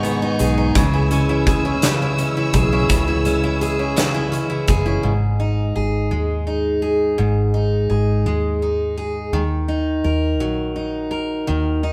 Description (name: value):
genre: six-eight pop ballad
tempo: 56 BPM (dotted quarters)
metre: 6/8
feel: straight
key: G# minor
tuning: A4 = 440 Hz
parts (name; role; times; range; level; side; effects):
- picked steel-string acoustic guitar; accompaniment; 0.0-11.9 s; G#2 to A#4; -22 LUFS; equal; none
- warm studio string section; sustained chords; 0.0-5.0 s; B4 to E6; -30 LUFS; equal; none
- direct-recorded clean electric guitar; arpeggios; 0.0-5.6 s; D#3 to D#4; -30 LUFS; equal; none
- vintage muted fingered electric bass; bass; 0.0-11.9 s; F#1 to D#2; -24 LUFS; equal; none
- huge arena drum kit; drums; 0.0-4.9 s; hi-hat, kick drum, snare drum; -24 LUFS; equal; none
room: moderate stone room reverb, RT60 1.2 s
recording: band playing live in one room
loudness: -19 LUFS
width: mono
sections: 0.0-5.0 A section; 5.0-11.9 B section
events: none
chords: 0.0 G#m; 0.8 C#m; 5.0 G#5; 9.3 D#m